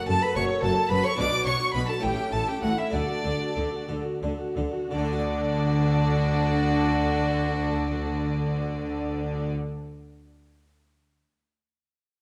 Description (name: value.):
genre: classical, baroque-style concerto movement with solo episodes.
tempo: 57-74 BPM (dotted quarters).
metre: 6/8.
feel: straight.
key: D major.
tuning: A4 = 440 Hz.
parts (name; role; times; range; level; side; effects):
rich chamber violin section; melody; 0.0-9.5 s; D5 to D6; -36 LUFS; equal; none.
rich violin; melody; 0.0-9.5 s; F#4 to D6; -34 LUFS; equal; none.
harpsichord; accompaniment; 0.0-9.8 s; F#2 to D5; -36 LUFS; equal; none.
rich chamber viola section; accompaniment; 0.0-9.5 s; C#4 to A4; -38 LUFS; equal; none.
warm studio violin section; second line; 0.1-9.5 s; D4 to D5; -33 LUFS; equal; none.
clear studio cello section; bass; 0.1-9.5 s; F#2 to D3; -32 LUFS; equal; none.
warm chamber double bass section; bass; 0.1-9.5 s; F#1 to D2; -32 LUFS; equal; none.
room: wet recital hall reverb, RT60 1.4 s.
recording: none.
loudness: -26 LUFS.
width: mono.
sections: 0.0-4.9 A section; 4.9-9.1 B section.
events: slowing down 0.4-4.9.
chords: 0.0 F#m; 1.2 Bm; 2.0 A; 2.9 D.